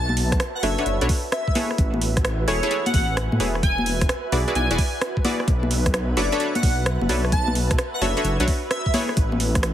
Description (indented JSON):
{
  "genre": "UK garage, two-step garage",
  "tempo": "130 BPM",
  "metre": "4/4",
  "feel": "swing 66% on 16ths",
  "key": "B dorian",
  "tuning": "A4 = 439 Hz",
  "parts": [
    { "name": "airy dreamy lead", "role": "melody", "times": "0.0-8.9 s", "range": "C#5 to A5", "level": "-28 LUFS", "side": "equal", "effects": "chorus, tape echo" },
    { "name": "soft string machine", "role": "sustained chords", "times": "0.0-9.7 s", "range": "B4", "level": "-36 LUFS", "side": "right 2 dB", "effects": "ensemble chorus, sidechain pumping" },
    { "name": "dark detuned saw bass", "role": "bass", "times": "0.0-9.7 s", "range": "E1 to A2", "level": "-24 LUFS", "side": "equal", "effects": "tube saturation, sidechain pumping" },
    { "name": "ethereal airy pad", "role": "texture", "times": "0.0-9.7 s", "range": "F#4 to A5", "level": "-33 LUFS", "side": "right 2 dB", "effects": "ensemble chorus, built-in reverb, sidechain pumping" },
    { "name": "garage drum kit", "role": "drums", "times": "0.1-9.7 s", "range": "congas, hi-hat, rim click", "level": "-26 LUFS", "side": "equal", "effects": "overdrive" },
    { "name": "electronic kick drum", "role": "drums", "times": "0.3-9.6 s", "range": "none", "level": "-22 LUFS", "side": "equal", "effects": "overdrive" },
    { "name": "punchy chord stab", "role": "stabs", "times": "0.6-9.1 s", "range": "D4 to D5", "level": "-26 LUFS", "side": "left 1 dB", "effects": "chorus, tape echo" }
  ],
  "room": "light reverb, digital ambience",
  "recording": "heavily compressed radio sound, multiband compression",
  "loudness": "-19 LUFS",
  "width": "side -11 dB against mid",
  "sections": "0.0-9.7 A section",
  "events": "none",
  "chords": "0.0 Bm9; 1.6 Amaj9; 3.6 E9; 5.5 Bm9; 8.9 Amaj9"
}